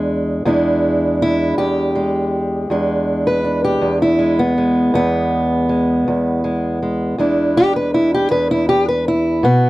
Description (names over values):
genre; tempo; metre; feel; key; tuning
acoustic country blues, solo or duo; 54 BPM (dotted quarters); 12/8; straight; E mixolydian; A4 = 440 Hz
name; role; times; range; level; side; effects
fingerpicked steel-string acoustic guitar; solo; 0.0-9.7 s; E2 to B4; -14 LUFS; equal; none
room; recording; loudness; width
light reverb; dry, close 1970s-style studio recording; -14 LUFS; side -18 dB against mid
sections
0.0-9.7 A section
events
steel-string acoustic guitar solo 0.0-9.7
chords
0.0 E7